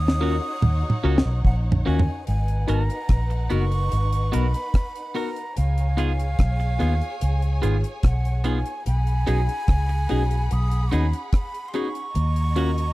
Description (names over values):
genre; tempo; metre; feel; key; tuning
lovers rock reggae; 73 BPM; 4/4; straight; G# dorian; A4 = 437 Hz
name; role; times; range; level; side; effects
breathy jazz flute; melody; 0.0-12.9 s; E#5 to D#6; -31 LUFS; right 1 dB; tape echo
warm studio violin section; second line; 0.0-12.9 s; D#4 to B5; -36 LUFS; left 1 dB; none
vintage muted fingered electric bass; bass; 0.0-12.9 s; F#1 to D#2; -21 LUFS; equal; none
deep reggae drum kit; drums; 0.1-12.9 s; hi-hat, kick drum, rim click, snare drum, toms; -21 LUFS; equal; none
mellow FM electric piano; accompaniment; 0.2-12.7 s; B3 to A#4; -28 LUFS; left 2 dB; chorus, phaser, slapback echo
twangy electric guitar; stabs; 0.2-12.7 s; A#3 to A#4; -31 LUFS; right 4 dB; none
room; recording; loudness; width
small room ambience; dry, close 1970s-style studio recording; -20 LUFS; side -18 dB against mid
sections
0.0-2.3 A section; 2.3-12.9 B section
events
drum fill 0.0-2.3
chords
0.0 D#m7; 2.3 G#m9; 5.6 C#7; 8.9 B6; 12.1 D#m7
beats
0.62 1.45 | 2.27 3.09 3.92 4.74 | 5.56 6.39 7.21 8.03 | 8.86 9.68 10.50 11.33 | 12.15